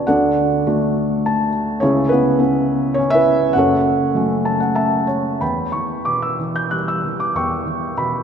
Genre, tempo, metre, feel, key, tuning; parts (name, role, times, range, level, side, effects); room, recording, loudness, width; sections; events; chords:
classical, lyrical solo piano; 90-105 BPM; 3/4; rubato; F# minor; A4 = 438 Hz
felt-muted upright piano; solo; 0.0-8.2 s; F#1 to G6; -16 LUFS; equal
wet church reverb, RT60 3.1 s; recorded in a church or concert hall; -16 LUFS; side -7 dB against mid
0.0-5.4 A section; 5.4-8.2 B section
felt piano fill 1.0-1.8, 4.2-5.4
0.1 D; 1.8 C#m7; 3.6 F#m; 5.4 Em